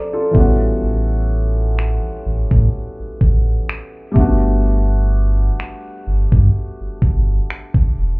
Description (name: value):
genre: contemporary R&B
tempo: 63 BPM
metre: 4/4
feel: swing 54% on 16ths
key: G major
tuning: A4 = 440 Hz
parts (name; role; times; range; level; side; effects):
- felt-muted upright piano; accompaniment; 0.0-8.2 s; E3 to D5; -22 LUFS; left 1 dB; none
- warm sub bass; bass; 0.3-8.2 s; E1 to A2; -16 LUFS; equal; none
- smooth R&B drum kit; drums; 0.3-7.9 s; finger snaps, kick drum; -14 LUFS; equal; none
room: digital ambience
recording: heard muffled through a wall, club ambience, EQ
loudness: -14 LUFS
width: side -31 dB against mid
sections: 0.0-8.2 A section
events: none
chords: 0.3 A13; 4.2 Gmaj7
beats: | 0.82 1.78 2.73 3.68 | 4.63 5.58 6.54 7.49